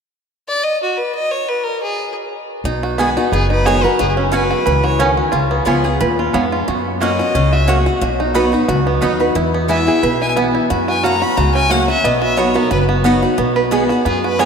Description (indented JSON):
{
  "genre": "bluegrass",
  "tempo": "179 BPM",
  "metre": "4/4",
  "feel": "swing 54% on 8ths",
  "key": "B major",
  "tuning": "A4 = 436 Hz",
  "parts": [
    { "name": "clear fiddle", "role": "melody", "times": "0.5-7.7, 9.7-14.5 s", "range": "F#4 to B5", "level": "-21 LUFS", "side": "left 1 dB", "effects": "none" },
    { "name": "upright bass", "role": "bass", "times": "2.6-14.5 s", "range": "F#1 to F#2", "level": "-20 LUFS", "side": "left 1 dB", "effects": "none" },
    { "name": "picked steel-string acoustic guitar", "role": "accompaniment", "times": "2.7-14.5 s", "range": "E2 to G#4", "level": "-19 LUFS", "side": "left 2 dB", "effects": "none" },
    { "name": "bluegrass banjo", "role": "arpeggios", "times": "2.7-14.5 s", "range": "F#3 to B4", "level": "-19 LUFS", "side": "right 3 dB", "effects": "slapback echo" },
    { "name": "mandolin", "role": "stabs", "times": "3.0-14.5 s", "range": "A#3 to B5", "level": "-20 LUFS", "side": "right 3 dB", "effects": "none" }
  ],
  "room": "wet cathedral reverb, RT60 6.1 s",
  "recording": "in a vast, echoing space",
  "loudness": "-13 LUFS",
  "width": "side -6 dB against mid",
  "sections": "0.0-2.7 A section; 2.7-13.4 B section; 13.4-14.5 B section",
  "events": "none",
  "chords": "0.0 N.C.; 2.7 B6; 4.0 F#sus2; 5.3 C#7; 6.7 F#; 8.0 B; 9.4 E; 10.7 F#; 12.0 B; 13.4 B6",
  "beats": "0.31 0.65 0.98 | 1.31 1.65 1.98 2.32 | 2.65 2.99 3.32 3.66 | 3.99 4.33 4.66 5.00 | 5.33 5.67 6.00 6.34 | 6.67 7.01 7.34 7.68 | 8.02 8.35 8.69 9.02 | 9.36 9.69 10.03 10.36 | 10.70 11.04 11.37 11.71 | 12.04 12.38 12.71 13.05 | 13.39 13.72 14.06 14.39"
}